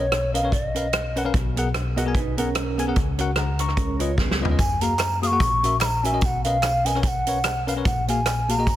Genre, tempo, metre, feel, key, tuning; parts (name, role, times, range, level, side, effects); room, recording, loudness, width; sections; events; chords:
uptempo gospel; 147 BPM; 4/4; swing 57% on 8ths; F# major; A4 = 440 Hz
mellow hollow bansuri; melody; 0.0-1.2, 4.6-8.8 s; C#5 to D#6; -24 LUFS; equal
bell-like tine electric piano; accompaniment; 0.0-8.8 s; A#1 to C#6; -24 LUFS; left 1 dB; fast stereo tremolo
natural country drum kit; drums; 0.1-8.8 s; hi-hat, kick drum, rim click, snare drum, toms; -25 LUFS; equal
mellow electric guitar; second line; 2.0-4.6 s; B3 to D#5; -31 LUFS; right 8 dB
tambourine and handclaps; percussion; 4.6-8.8 s; -35 LUFS; right 4 dB
light reverb, small room ambience; dense, heavily limited modern master; -20 LUFS; side -13 dB against mid
0.0-8.8 A section
drum fill 4.2-4.6
0.0 Bmaj9; 1.3 G#m9/B; 3.0 F#/C#; 3.8 C#9; 4.6 F#maj9; 5.4 F#7/A#; 6.2 Bmaj7sus2; 7.9 F#maj9/A#